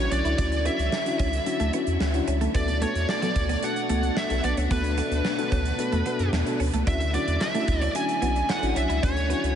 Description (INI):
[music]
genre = 1980s-style pop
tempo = 111 BPM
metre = 4/4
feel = straight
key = unclear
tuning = A4 = 440 Hz
[part]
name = high-gain lead guitar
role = melody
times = 0.0-9.6 s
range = B4 to G#5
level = -28 LUFS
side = right 1 dB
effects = distortion, tape echo
[part]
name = FM electric piano with tremolo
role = accompaniment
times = 0.0-9.6 s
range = B3 to A4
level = -30 LUFS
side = left 4 dB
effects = none
[part]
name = phased analog pad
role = sustained chords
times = 0.0-9.6 s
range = B2 to F#4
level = -33 LUFS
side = equal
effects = phaser, chorus
[part]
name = round analog bass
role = bass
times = 0.0-9.5 s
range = A1 to F#2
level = -26 LUFS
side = equal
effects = none
[part]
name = twelve-string electric guitar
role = riff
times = 0.1-9.4 s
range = F#3 to E4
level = -33 LUFS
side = right 4 dB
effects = wide subtle chorus, tape echo
[part]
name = gated 80s drum kit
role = drums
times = 0.1-9.6 s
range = hi-hat, kick drum, snare drum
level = -31 LUFS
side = right 1 dB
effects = none
[part]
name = group handclap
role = percussion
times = 7.4-8.6 s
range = none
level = barely audible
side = none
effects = none
[sound]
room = moderate huge ambient reverb, RT60 7.6 s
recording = dreamy mix soaked in reverb, nothing above 10.9 kHz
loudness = -22 LUFS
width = side -9 dB against mid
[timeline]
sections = 0.0-9.6 A section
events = none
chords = 0.0 Dmaj9; 2.5 Bm7; 6.9 Dmaj9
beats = | 0.39 0.93 1.47 2.01 | 2.55 3.09 3.63 4.17 | 4.71 5.25 5.79 6.33 | 6.87 7.41 7.95 8.49 | 9.03